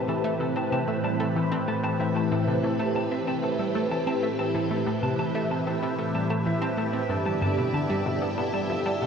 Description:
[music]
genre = ambient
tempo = 94 BPM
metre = 4/4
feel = straight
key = A minor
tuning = A4 = 440 Hz
[part]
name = phased string machine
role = sustained chords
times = 0.0-9.1 s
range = G2 to D5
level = -26 LUFS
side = equal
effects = ensemble chorus, phaser, shimmer reverb
[part]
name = analog pluck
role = riff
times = 0.0-9.1 s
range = G2 to C4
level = -29 LUFS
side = equal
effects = chorus, phaser, tape echo, shimmer reverb
[part]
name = bubbling stepped-filter texture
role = texture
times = 0.0-9.1 s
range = E4 to E5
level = -35 LUFS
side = right 2 dB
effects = chorus, built-in reverb, shimmer reverb
[part]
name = semi-hollow electric guitar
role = arpeggios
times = 0.1-9.1 s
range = A4 to A5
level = -34 LUFS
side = equal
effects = auto-pan, tape echo, shimmer reverb
[sound]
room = wet huge ambient reverb, RT60 8.1 s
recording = worn, warbling old tape, cassette tape, warbly pitch drift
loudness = -24 LUFS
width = side -6 dB against mid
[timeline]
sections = 0.0-9.1 A section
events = none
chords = 0.0 Am7; 7.1 G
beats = 0.08 0.72 1.36 | 2.00 2.64 3.28 3.91 | 4.55 5.19 5.83 6.47 | 7.11 7.74 8.38 9.02

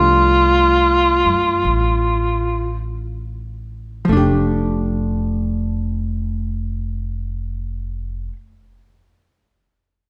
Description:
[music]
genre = jazz ballad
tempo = 47-55 BPM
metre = 4/4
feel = swing 67% on 8ths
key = F major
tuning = A4 = 440 Hz
[part]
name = breathy tenor saxophone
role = melody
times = 0.0-2.8 s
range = F4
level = -17 LUFS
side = equal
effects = none
[part]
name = hollow-body jazz guitar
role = accompaniment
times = 0.0-8.4 s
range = F3 to G4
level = -25 LUFS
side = equal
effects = none
[part]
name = upright bass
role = bass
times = 0.0-8.3 s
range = F1 to Gb2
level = -24 LUFS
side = equal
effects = none
[sound]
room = wet recital hall reverb, RT60 1.6 s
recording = recorded in a church or concert hall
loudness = -18 LUFS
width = mono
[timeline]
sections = 0.0-4.1 A section; 4.1-9.1 B section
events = slowing down 0.0-4.1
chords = 0.0 F69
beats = 0.51 1.64 2.83 | 4.07 5.34 6.59 7.85

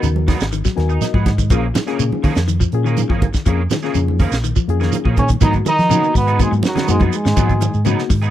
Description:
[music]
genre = afrobeat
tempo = 123 BPM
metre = 4/4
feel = straight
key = G# dorian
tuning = A4 = 440 Hz
[part]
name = reed electric piano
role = accompaniment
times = 0.0-8.1 s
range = A#3 to G#5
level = -24 LUFS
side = left 11 dB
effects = none
[part]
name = semi-hollow electric guitar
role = arpeggios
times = 0.0-8.3 s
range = C#3 to F#3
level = -25 LUFS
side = left 8 dB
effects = none
[part]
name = electric guitar at the edge of break-up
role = stabs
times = 0.0-8.3 s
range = E#3 to G#4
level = -26 LUFS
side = right 5 dB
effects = ensemble chorus
[part]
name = fingered electric bass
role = bass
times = 0.0-8.3 s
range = G#1 to E#3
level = -18 LUFS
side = equal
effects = none
[part]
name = tight funk drum kit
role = drums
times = 0.0-8.3 s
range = hi-hat, kick drum, snare drum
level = -18 LUFS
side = equal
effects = none
[part]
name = congas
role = percussion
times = 0.0-8.1 s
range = none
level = -24 LUFS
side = right 5 dB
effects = none
[part]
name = shekere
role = percussion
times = 0.0-8.3 s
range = none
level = -25 LUFS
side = right 7 dB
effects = none
[part]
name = trombone with metal mute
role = melody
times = 5.2-7.8 s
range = F#3 to D#4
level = -19 LUFS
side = equal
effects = none
[part]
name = breathy trumpet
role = second line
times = 5.2-7.8 s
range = F#4 to D#5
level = -29 LUFS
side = right 1 dB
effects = none
[part]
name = mellow bass trombone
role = second line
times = 5.2-7.8 s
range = F#2 to D#3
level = -26 LUFS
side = right 11 dB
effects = none
[sound]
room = small room ambience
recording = dry, close 1970s-style studio recording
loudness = -14 LUFS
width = side -12 dB against mid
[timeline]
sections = 0.0-5.4 A section; 5.4-8.3 B section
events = reed electric piano fill 0.5-1.5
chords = 0.0 G#m7; 1.5 A#m7; 5.4 G#m7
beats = 0.04 0.53 1.02 | 1.51 2.00 2.48 2.97 | 3.46 3.95 4.44 4.93 | 5.42 5.90 6.39 6.88 | 7.37 7.86

